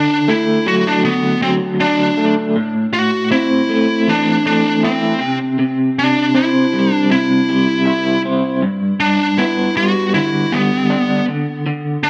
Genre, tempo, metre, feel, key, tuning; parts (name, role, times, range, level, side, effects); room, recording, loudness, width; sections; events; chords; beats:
rock; 79 BPM; 4/4; straight; A4 = 443 Hz
fuzz lead guitar; melody; 0.0-12.1 s; B3 to F#4; -19 LUFS; equal; distortion, tape echo
electric guitar through a small old amp; riff; 0.0-12.1 s; G2 to E4; -18 LUFS; equal; tremolo
light reverb, digital ambience; -16 LUFS; mono
0.0-12.1 A section
0.0 D; 2.6 Am; 5.2 C; 8.6 G; 11.3 N.C.
0.29 1.04 1.80 | 2.56 3.32 4.08 4.84 | 5.60 6.36 7.11 7.87 | 8.63 9.39 10.15 10.91 | 11.67